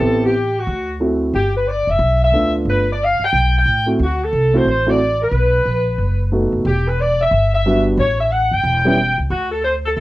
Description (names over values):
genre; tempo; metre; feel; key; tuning
jazz, big band swing; 181 BPM; 4/4; swing 63% on 8ths; D mixolydian; A4 = 440 Hz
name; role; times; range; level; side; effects
warm saxophone section; melody; 0.0-10.0 s; F#4 to G5; -17 LUFS; equal; cassette tape
dark grand piano; accompaniment; 0.0-9.0 s; G3 to G4; -18 LUFS; right 1 dB; none
upright bass; bass; 0.0-10.0 s; E1 to A2; -19 LUFS; equal; none
room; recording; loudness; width
moderate small room reverb, RT60 0.5 s; home recording on cassette; -14 LUFS; side -17 dB against mid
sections
0.0-10.0 A section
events
none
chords
0.0 Am7; 0.7 D7; 1.3 G7; 4.0 D7; 5.3 B7; 6.6 Em7; 8.0 A7; 9.3 D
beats
| 0.01 0.34 0.67 1.00 | 1.33 1.67 2.00 2.33 | 2.66 3.00 3.33 3.66 | 3.99 4.32 4.66 4.99 | 5.32 5.65 5.98 6.32 | 6.65 6.98 7.31 7.64 | 7.98 8.31 8.64 8.97 | 9.30 9.63 9.97